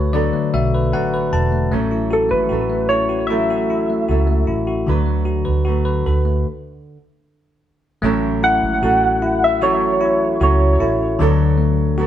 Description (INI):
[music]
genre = pop ballad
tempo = 76 BPM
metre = 4/4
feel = straight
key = A major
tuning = A4 = 443 Hz
[part]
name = bell-like tine electric piano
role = accompaniment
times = 0.0-12.1 s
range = D3 to A5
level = -20 LUFS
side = left 3 dB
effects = none
[part]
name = nylon-string guitar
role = arpeggios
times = 0.0-12.1 s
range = A2 to B4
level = -24 LUFS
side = right 6 dB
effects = none
[part]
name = vintage muted fingered electric bass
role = bass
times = 0.0-12.1 s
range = E1 to D2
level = -20 LUFS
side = right 1 dB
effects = none
[part]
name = soft struck synth lead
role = melody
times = 2.1-11.0 s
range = A4 to F#5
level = -18 LUFS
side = equal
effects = chorus, phaser, tape echo
[sound]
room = moderate stone room reverb, RT60 1.0 s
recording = band playing live in one room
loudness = -15 LUFS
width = side -11 dB against mid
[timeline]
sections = 0.0-8.0 A section; 8.0-12.1 B section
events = tine electric piano fill 0.0-1.7; stop 6.5-8.0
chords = 0.0 D6; 1.7 A6; 4.9 D6; 6.5 N.C.; 8.0 A6; 11.2 D6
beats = 0.14 0.93 | 1.72 2.51 3.30 4.09 | 4.88 5.67 6.46 7.24 | 8.03 8.82 9.61 10.40 | 11.19 11.98